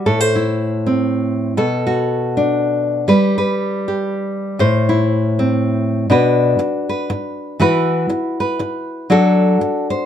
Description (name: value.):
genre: folk, solo fingerstyle acoustic guitar.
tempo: 119 BPM.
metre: 3/4.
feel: swing 59% on 8ths.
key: A dorian.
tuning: A4 = 441 Hz.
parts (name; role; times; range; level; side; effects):
nylon-string guitar; solo; 0.0-10.1 s; A2 to C5; -15 LUFS; equal; none.
room: light reverb.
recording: dark, warm production.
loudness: -15 LUFS.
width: side -9 dB against mid.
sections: 0.0-6.1 A section; 6.1-10.1 B section.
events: none.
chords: 0.1 Am; 1.6 Bm7; 3.1 G; 4.6 Am; 6.1 Bm; 7.6 Esus2; 9.1 D/F#.